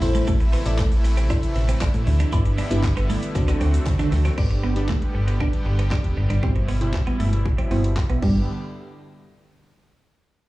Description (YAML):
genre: dance-pop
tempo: 117 BPM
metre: 4/4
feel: straight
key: G major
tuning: A4 = 441 Hz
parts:
  - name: glassy wavetable pluck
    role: accompaniment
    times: 0.0-8.5 s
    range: B2 to D5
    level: -29 LUFS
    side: equal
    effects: chorus, sidechain pumping, low-pass filter
  - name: supersaw pad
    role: sustained chords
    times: 0.0-8.5 s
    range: B2 to G4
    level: -30 LUFS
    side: equal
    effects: sidechain pumping, low-pass filter
  - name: twelve-string electric guitar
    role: riff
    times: 0.0-8.4 s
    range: G3 to E4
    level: -29 LUFS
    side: right 3 dB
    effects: analog chorus, low-pass filter
  - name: solid FM bass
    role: bass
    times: 0.0-8.5 s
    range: E1 to D3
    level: -21 LUFS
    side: equal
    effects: sidechain pumping
  - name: pop drum kit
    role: drums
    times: 0.0-8.3 s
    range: crash cymbal, handclaps, hi-hat, kick drum, shaker, snare drum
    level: -24 LUFS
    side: equal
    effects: none
  - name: group handclap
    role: percussion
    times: 0.5-4.0 s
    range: none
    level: -42 LUFS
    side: left 3 dB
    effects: none
room: little or no reverb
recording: dry, gritty hardware recording, cassette tape, studio reverb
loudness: -19 LUFS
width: side -18 dB against mid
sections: 0.0-4.4 A section; 4.4-8.5 B section; 8.5-10.5 C section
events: drum fill 3.9-4.4; filter sweep 4.4-8.5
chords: 0.0 Am; 2.3 Em7/G; 3.4 D7; 4.4 G; 6.4 Cmaj7/G; 8.2 G; 8.5 N.C.